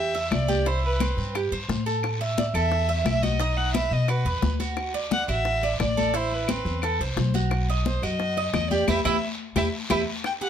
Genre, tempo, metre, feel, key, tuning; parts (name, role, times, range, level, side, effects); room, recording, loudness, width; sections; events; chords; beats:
latin, Cuban son and guajira; 175 BPM; 4/4; straight; E minor; A4 = 442 Hz
warm violin; melody; 0.0-10.5 s; B4 to G5; -28 LUFS; right 1 dB
Cuban tres; arpeggios; 0.0-10.5 s; C4 to E5; -28 LUFS; right 4 dB
upright bass; bass; 0.0-10.0 s; A1 to B2; -27 LUFS; equal
congas; percussion; 0.1-10.5 s; -30 LUFS; left 6 dB
bongos; percussion; 0.2-10.5 s; -33 LUFS; left 7 dB
claves; percussion; 0.3-10.4 s; -36 LUFS; equal
guiro; percussion; 0.3-10.5 s; -38 LUFS; left 2 dB
light reverb; -22 LUFS; side -9 dB against mid
0.0-10.2 A section
drum fill 8.9-10.2; band accent 8.9-10.2
0.0 Em; 0.7 C; 2.0 A5; 3.4 B; 4.8 D; 6.1 Am; 7.5 B; 8.9 Em
0.32 | 0.66 1.00 1.34 1.69 | 2.03 2.37 2.72 3.06 | 3.40 3.74 4.09 4.43 | 4.77 5.11 5.46 5.80 | 6.14 6.48 6.83 7.17 | 7.51 7.85 8.19 8.54 | 8.88 9.22 9.56 9.90 | 10.24